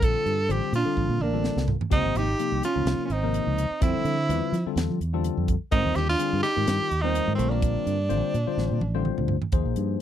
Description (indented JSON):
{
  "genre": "electric jazz fusion",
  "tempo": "126 BPM",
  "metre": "4/4",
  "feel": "swing 56% on 16ths",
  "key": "unclear",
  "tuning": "A4 = 440 Hz",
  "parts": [
    { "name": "bright tenor saxophone", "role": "melody", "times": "0.0-9.0 s", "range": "C4 to A4", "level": "-27 LUFS", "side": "right 2 dB", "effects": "slapback echo" },
    { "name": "vintage hollow-body jazz guitar", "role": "second line", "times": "0.0-9.1 s", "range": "A3 to F4", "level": "-32 LUFS", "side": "right 5 dB", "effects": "slapback echo" },
    { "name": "tine electric piano", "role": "accompaniment", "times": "0.0-10.0 s", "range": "C3 to C5", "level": "-30 LUFS", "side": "left 14 dB", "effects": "analog chorus" },
    { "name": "fingered electric bass", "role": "bass", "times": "0.0-10.0 s", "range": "Ab1 to F3", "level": "-27 LUFS", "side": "right 1 dB", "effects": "none" },
    { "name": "crisp fusion drum kit", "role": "drums", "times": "0.0-9.9 s", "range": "hi-hat, kick drum, snare drum, toms", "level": "-27 LUFS", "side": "right 1 dB", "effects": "none" }
  ],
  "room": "light reverb",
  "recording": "dry, close 1970s-style studio recording",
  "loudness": "-22 LUFS",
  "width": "side -10 dB against mid",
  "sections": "0.0-9.5 A section",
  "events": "drum fill 1.0-1.9, 8.6-9.5",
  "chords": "0.0 Bbmaj9; 1.9 Dbmaj9; 3.8 Fmaj9; 5.7 Abmaj9; 7.4 Bbmaj9",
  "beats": "| 0.02 0.49 0.97 1.44 | 1.92 2.39 2.87 3.34 | 3.82 4.29 4.77 5.24 | 5.72 6.19 6.67 7.15 | 7.62 8.10 8.58 9.05 | 9.53 10.01"
}